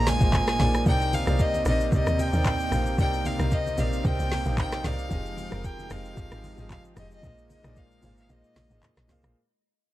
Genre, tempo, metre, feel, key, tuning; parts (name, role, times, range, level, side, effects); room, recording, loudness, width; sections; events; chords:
amapiano; 113 BPM; 4/4; swing 55% on 16ths; A4 = 440 Hz
rich fiddle; melody; 0.0-9.1 s; Eb5 to Ab5; -30 LUFS; equal; ping-pong delay
clear grand piano; accompaniment; 0.0-9.4 s; Bb2 to F5; -32 LUFS; right 2 dB
warm analog pad; sustained chords; 0.0-9.3 s; C3 to G5; -36 LUFS; equal; chorus, sidechain pumping
woody log drum bass; bass; 0.0-9.4 s; F1 to Eb2; -28 LUFS; equal
smooth R&B drum kit; drums; 0.1-9.3 s; handclaps, hi-hat, kick drum, rim click, shaker, snare drum; -28 LUFS; equal
congas; percussion; 0.1-9.2 s; -35 LUFS; left 2 dB
small room ambience; dark, warm production; -23 LUFS; side -15 dB against mid
0.0-9.4 A section
drop 0.0-9.4; fade-out 0.0-9.4; break 8.3-9.4
0.0 Bb7sus4; 0.9 Cm9; 5.1 Fm9; 7.2 Bb7sus4